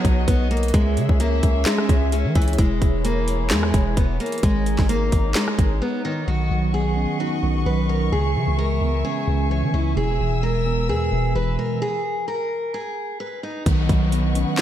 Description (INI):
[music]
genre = hip hop, trap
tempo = 130 BPM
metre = 4/4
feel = half-time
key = B major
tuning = A4 = 439 Hz
[part]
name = picked steel-string acoustic guitar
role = melody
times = 0.0-13.6 s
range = D#3 to C#5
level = -25 LUFS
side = equal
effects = low-pass filter, ping-pong delay
[part]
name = dark studio string section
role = sustained chords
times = 0.0-14.6 s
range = E3 to E6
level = -29 LUFS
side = left 2 dB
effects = none
[part]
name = long sustained 808-style bass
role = bass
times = 0.0-14.5 s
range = E1 to E3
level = -22 LUFS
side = equal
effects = none
[part]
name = trap drum kit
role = drums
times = 0.0-5.7, 13.7-14.6 s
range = handclaps, hi-hat, kick drum, rim click, snare drum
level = -20 LUFS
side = equal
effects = none
[part]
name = mellow tine electric piano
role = accompaniment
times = 6.3-14.6 s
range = B2 to B4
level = -24 LUFS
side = right 1 dB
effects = medium stereo tremolo, low-pass filter
[part]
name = downlifter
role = sound effects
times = 13.7-14.6 s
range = none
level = -31 LUFS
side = equal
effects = none
[sound]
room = moderate lush hall reverb, RT60 1.9 s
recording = dreamy mix soaked in reverb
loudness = -18 LUFS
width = side -11 dB against mid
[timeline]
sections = 0.0-6.3 A section; 6.3-13.7 B section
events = break 5.8-6.3; stop 11.8-13.7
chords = 0.0 Badd9; 0.7 C#m; 2.6 E; 4.4 G#sus2; 6.3 Badd9; 8.1 C#m7; 10.0 E; 11.8 N.C.; 13.7 Badd9